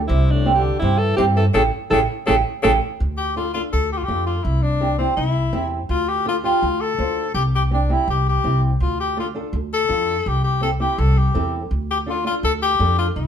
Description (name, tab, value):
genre	latin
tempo	165 BPM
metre	4/4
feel	straight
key	D minor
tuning	A4 = 441 Hz
part	upright bass	bass	0.0-13.3 s	A1 to G2	-21 LUFS	equal	none
part	bright alto saxophone	melody	0.1-2.7 s	D4 to A4	-22 LUFS	equal	none
part	breathy tenor saxophone	second line	0.1-13.3 s	A2 to A4	-22 LUFS	left 5 dB	none
part	flamenco guitar	accompaniment	0.5-13.1 s	C4 to C5	-24 LUFS	right 4 dB	none
room	moderate studio reverb, RT60 0.8 s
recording	band playing live in one room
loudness	-17 LUFS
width	side -8 dB against mid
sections	0.0-3.0 A section; 3.0-13.3 B section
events	band accent 1.5-3.0; tenor saxophone solo 3.0-13.3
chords	0.1 C; 1.5 A7(no3); 3.0 Dm; 4.4 C; 5.9 Dm; 7.4 C; 8.8 Dm; 10.3 C; 11.7 Dm